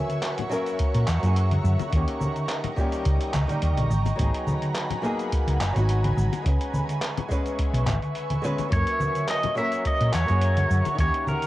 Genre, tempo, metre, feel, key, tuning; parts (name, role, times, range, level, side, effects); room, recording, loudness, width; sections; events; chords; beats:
sunset chillout; 106 BPM; 4/4; swing 54% on 16ths; A4 = 440 Hz
nylon-string guitar; accompaniment; 0.0-11.5 s; D#3 to B4; -30 LUFS; equal; auto-pan, cassette tape, analog delay, shimmer reverb
ethereal airy pad; sustained chords; 0.0-11.5 s; B4 to C#6; -32 LUFS; equal; ensemble chorus, built-in reverb, cassette tape, shimmer reverb
dusty soul sampler-style drum kit; drums; 0.1-11.5 s; congas, handclaps, hi-hat, shaker; -29 LUFS; equal; overdrive, cassette tape
congas; percussion; 0.4-11.0 s; -32 LUFS; left 6 dB
electronic kick drum; drums; 0.8-11.1 s; -26 LUFS; equal; cassette tape
hollow-body short-scale fingered electric bass; bass; 0.9-11.1 s; F#1 to A#2; -22 LUFS; equal; tube saturation
pedal steel guitar; melody; 8.7-11.5 s; A#4 to E5; -25 LUFS; equal; cassette tape, shimmer reverb
light reverb; home recording on cassette; -22 LUFS; side -16 dB against mid
0.0-11.5 A section
break 8.2-8.7
0.0 F#7; 1.9 D#7; 3.9 G#m9; 6.5 C#m7; 8.7 F#7
0.23 0.80 1.36 | 1.93 2.49 3.06 3.63 | 4.19 4.76 5.32 5.89 | 6.46 7.02 7.59 8.15 | 8.72 9.29 9.85 10.42 | 10.98